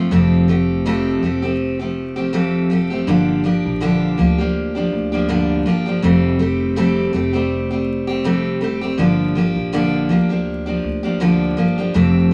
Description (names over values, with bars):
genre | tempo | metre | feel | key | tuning
acoustic pop | 81 BPM | 4/4 | swing 55% on 16ths | unclear | A4 = 440 Hz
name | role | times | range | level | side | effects
picked steel-string acoustic guitar | accompaniment | 0.0-12.3 s | F2 to G4 | -18 LUFS | equal | none
upright bass | bass | 0.0-12.3 s | F1 to D2 | -27 LUFS | equal | none
room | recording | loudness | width
moderate studio reverb, RT60 0.6 s | vinyl crackle | -18 LUFS | mono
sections
0.1-12.3 A section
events
none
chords
0.0 Fadd9; 3.1 Gm7; 6.0 Fadd9; 9.0 Gm7